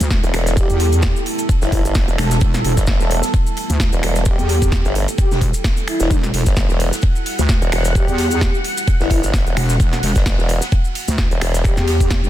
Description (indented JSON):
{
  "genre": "bass house",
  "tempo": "130 BPM",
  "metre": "4/4",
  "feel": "swing 56% on 16ths",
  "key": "E minor",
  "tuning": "A4 = 439 Hz",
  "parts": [
    { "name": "deep dark ambient pad", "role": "sustained chords", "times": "0.0-12.3 s", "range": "G3 to F#5", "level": "-26 LUFS", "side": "right 2 dB", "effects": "chorus, built-in reverb, sidechain pumping" },
    { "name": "wobble bass", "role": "bass", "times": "0.0-12.3 s", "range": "E1 to E2", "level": "-18 LUFS", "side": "equal", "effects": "chorus, tube saturation, sidechain pumping" },
    { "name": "big-room dance drum kit", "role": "drums", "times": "0.0-12.2 s", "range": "finger snaps, hi-hat, ride cymbal, snare drum", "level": "-25 LUFS", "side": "equal", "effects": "none" },
    { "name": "maracas", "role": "percussion", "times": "0.0-12.3 s", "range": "none", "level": "-31 LUFS", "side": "left 2 dB", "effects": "none" },
    { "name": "electronic kick drum", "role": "drums", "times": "0.1-12.2 s", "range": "none", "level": "-17 LUFS", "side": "equal", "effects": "none" },
    { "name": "open jazz drum kit", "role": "drums", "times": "0.1-12.2 s", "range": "ride cymbal, snare drum", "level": "-31 LUFS", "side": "right 2 dB", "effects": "sidechain pumping on cymbals, high-pass filter on cymbals, high-pass filter on snare, high-pass filter on room" },
    { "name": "formant-sweep wobble bass", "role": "bass", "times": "0.2-11.8 s", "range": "E1 to G1", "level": "-19 LUFS", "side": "equal", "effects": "chorus, overdrive, sidechain pumping" },
    { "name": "breathy flute-like synth lead", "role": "melody", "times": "0.6-12.3 s", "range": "E4 to G4", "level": "-24 LUFS", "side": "left 1 dB", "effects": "ensemble chorus, digital delay" }
  ],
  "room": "digital ambience",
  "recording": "dense, heavily limited modern master",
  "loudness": "-14 LUFS",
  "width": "side -13 dB against mid",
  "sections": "0.0-12.3 A section",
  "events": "none",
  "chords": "0.0 Em"
}